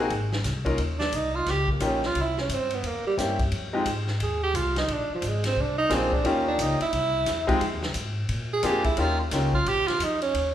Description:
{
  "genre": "jazz, small-group swing and bop",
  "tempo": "176 BPM",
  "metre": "4/4",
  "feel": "swing 63% on 8ths",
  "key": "Eb mixolydian",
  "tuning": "A4 = 440 Hz",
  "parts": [
    { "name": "bright grand piano", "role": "accompaniment", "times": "0.0-9.5 s", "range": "Ab3 to Bb4", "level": "-27 LUFS", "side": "left 2 dB", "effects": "none" },
    { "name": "upright bass", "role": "bass", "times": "0.0-10.5 s", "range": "Ab1 to Bb2", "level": "-30 LUFS", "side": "left 1 dB", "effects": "none" },
    { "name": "vintage drum kit", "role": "drums", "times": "0.1-10.4 s", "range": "hi-hat, kick drum, ride cymbal, snare drum", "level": "-31 LUFS", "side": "left 1 dB", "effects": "none" },
    { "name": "breathy tenor saxophone", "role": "second line", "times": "1.0-10.5 s", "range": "F3 to Ab4", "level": "-26 LUFS", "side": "right 3 dB", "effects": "none" }
  ],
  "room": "wet recital hall reverb, RT60 1.3 s",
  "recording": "recorded in a church or concert hall",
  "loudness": "-23 LUFS",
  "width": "side -11 dB against mid",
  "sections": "0.0-9.0 A section; 9.0-10.5 A section",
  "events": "tenor saxophone solo 0.0-10.5",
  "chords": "0.0 Ab9; 0.8 Eb9; 2.2 C7b9; 3.5 Fm7; 4.9 Bb9; 6.3 Eb9; 6.9 C; 7.6 Fm7; 8.3 Bb7; 9.0 Eb9",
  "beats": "0.11 0.45 | 0.79 1.13 1.48 1.82 | 2.16 2.50 2.84 3.18 | 3.53 3.87 4.21 4.55 | 4.89 5.23 5.57 5.92 | 6.26 6.60 6.94 7.28 | 7.62 7.96 8.30 8.64 | 8.98 9.32 9.66 10.00 | 10.34"
}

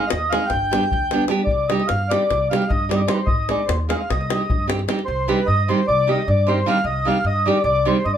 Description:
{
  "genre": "balkan folk, Balkan wedding band",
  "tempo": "303 BPM (eighths)",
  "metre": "9/8",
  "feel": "straight",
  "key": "C harmonic minor",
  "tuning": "A4 = 441 Hz",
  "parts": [
    { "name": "mellow accordion", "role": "melody", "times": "0.0-8.2 s", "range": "B4 to G5", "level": "-20 LUFS", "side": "left 1 dB", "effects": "none" },
    { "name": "nylon-string guitar", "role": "accompaniment", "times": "0.0-8.0 s", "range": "Eb3 to Ab4", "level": "-22 LUFS", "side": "right 3 dB", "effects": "none" },
    { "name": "upright bass", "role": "bass", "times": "0.1-8.2 s", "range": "G1 to G2", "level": "-24 LUFS", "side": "equal", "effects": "none" },
    { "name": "davul", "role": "percussion", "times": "0.1-5.0 s", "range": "none", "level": "-24 LUFS", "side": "left 3 dB", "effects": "none" }
  ],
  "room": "wet studio ambience, RT60 0.5 s",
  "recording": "band playing live in one room",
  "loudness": "-17 LUFS",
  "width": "side -9 dB against mid",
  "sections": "0.0-5.1 A section; 5.1-8.2 B section",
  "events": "none",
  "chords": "0.0 Ab; 0.5 G; 1.5 Cm; 3.3 Ab; 4.1 Cm",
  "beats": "0.11 0.30 0.50 0.70 0.90 1.09 1.29 | 1.49 1.69 1.88 2.08 2.28 2.48 2.68 2.88 3.08 | 3.27 3.47 3.67 3.87 4.07 4.27 4.46 4.66 4.86 | 5.06 5.26 5.46 5.65 5.85 6.05 6.25 6.44 6.64 | 6.83 7.03 7.23 7.42 7.62 7.82 8.01"
}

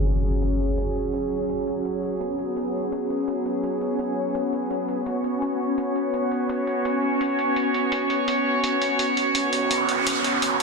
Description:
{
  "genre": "half-time drum and bass",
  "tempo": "168 BPM",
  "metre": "4/4",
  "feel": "swing 59% on 16ths, half-time",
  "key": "unclear",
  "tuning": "A4 = 440 Hz",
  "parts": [
    { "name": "bright chamber string section", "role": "sustained chords", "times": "0.0-10.6 s", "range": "F#3 to C#5", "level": "-25 LUFS", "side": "right 2 dB", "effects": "none" },
    { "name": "impact and noise sweep", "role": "sound effects", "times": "0.0-0.8, 9.5-10.6 s", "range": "none", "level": "-25 LUFS", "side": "right 1 dB", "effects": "none" },
    { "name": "backwards swelling texture", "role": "texture", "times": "0.3-10.6 s", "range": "C#4 to C#5", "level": "-27 LUFS", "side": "left 2 dB", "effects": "built-in reverb" },
    { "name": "electronic hi-hat", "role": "drums", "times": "0.1-10.6 s", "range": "none", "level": "-31 LUFS", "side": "equal", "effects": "soft clipping on snare" }
  ],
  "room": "wet lush hall reverb, RT60 1.8 s",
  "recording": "dense, heavily limited modern master, low-pass filter",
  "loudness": "-22 LUFS",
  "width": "side -4 dB against mid",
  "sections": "0.0-10.6 A section",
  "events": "impact 0.0-0.8; filter sweep 0.0-10.6; noise sweep 9.5-10.6",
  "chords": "0.0 F#5; 5.1 B5",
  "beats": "0.06 0.42 | 0.78 1.14 1.49 1.85 | 2.21 2.56 2.92 3.28 | 3.63 3.99 4.35 4.71 | 5.06 5.42 5.78 6.13 | 6.49 6.85 7.21 7.56 | 7.92 8.28 8.63 8.99 | 9.35 9.71 10.06 10.42"
}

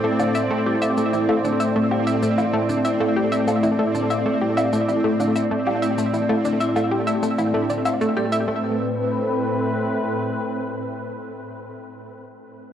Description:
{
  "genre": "ambient, sequencer-driven space music",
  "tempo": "96 BPM",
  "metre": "4/4",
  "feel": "straight",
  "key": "A minor",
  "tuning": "A4 = 441 Hz",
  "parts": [
    { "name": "sweeping resonant pad", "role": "sustained chords", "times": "0.0-11.7 s", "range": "A2 to D5", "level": "-23 LUFS", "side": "equal", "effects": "chorus" },
    { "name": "vibraphone with medium mallets", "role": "arpeggios", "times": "0.0-8.8 s", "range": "A3 to A4", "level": "-26 LUFS", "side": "equal", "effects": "auto-pan, analog delay" },
    { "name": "analog pluck", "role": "riff", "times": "0.0-8.8 s", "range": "A3 to E5", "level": "-24 LUFS", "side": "equal", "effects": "chorus, analog delay" },
    { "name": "bubbling stepped-filter texture", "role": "texture", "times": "0.0-8.5 s", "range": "C4", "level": "-33 LUFS", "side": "right 5 dB", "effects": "chorus, built-in reverb" },
    { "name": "shaker and woodblock", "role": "percussion", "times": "0.2-8.4 s", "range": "none", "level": "-31 LUFS", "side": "left 3 dB", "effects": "analog delay" }
  ],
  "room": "wet huge ambient reverb, RT60 8.1 s",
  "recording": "worn, warbling old tape, cassette tape, warbly pitch drift",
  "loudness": "-19 LUFS",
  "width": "side -9 dB against mid",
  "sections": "0.0-8.5 A section; 8.5-11.0 B section",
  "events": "none",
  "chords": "0.0 Am; 8.5 Amadd9",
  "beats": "0.35 | 0.98 1.60 2.23 2.85 | 3.48 4.10 4.73 5.35 | 5.98 6.60 7.23 7.85 | 8.48 9.10 9.73 10.35"
}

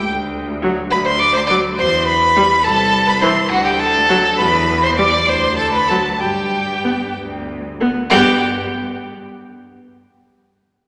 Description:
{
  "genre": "quick classical-period movement for string quartet",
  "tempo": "62-71 BPM (dotted quarters)",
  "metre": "6/8",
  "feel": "rubato",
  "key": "G major",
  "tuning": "A4 = 440 Hz",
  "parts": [
    { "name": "rich violin", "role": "melody", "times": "0.0-8.4 s", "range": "F#5 to D6", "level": "-20 LUFS", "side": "equal", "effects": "none" },
    { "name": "rich violin", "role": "second line", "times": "0.0-8.4 s", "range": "F#4 to D5", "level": "-20 LUFS", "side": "equal", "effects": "none" },
    { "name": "warm cello", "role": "bass", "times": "0.1-8.5 s", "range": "C2 to G2", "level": "-25 LUFS", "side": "equal", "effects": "none" },
    { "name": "rich viola", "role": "accompaniment", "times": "0.6-8.5 s", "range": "E3 to B3", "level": "-24 LUFS", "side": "equal", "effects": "none" }
  ],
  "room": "wet concert hall reverb, RT60 2.4 s",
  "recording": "none",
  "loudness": "-16 LUFS",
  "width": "mono",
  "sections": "0.0-8.1 A section; 8.1-9.9 B section",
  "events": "none",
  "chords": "0.1 D; 1.8 Em; 2.6 Am/C; 3.5 D; 4.4 Em; 5.3 D; 6.2 G",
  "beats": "0.07 | 0.92 1.79 | 2.65 3.52 | 4.39 5.29 | 6.21 7.16 | 8.11"
}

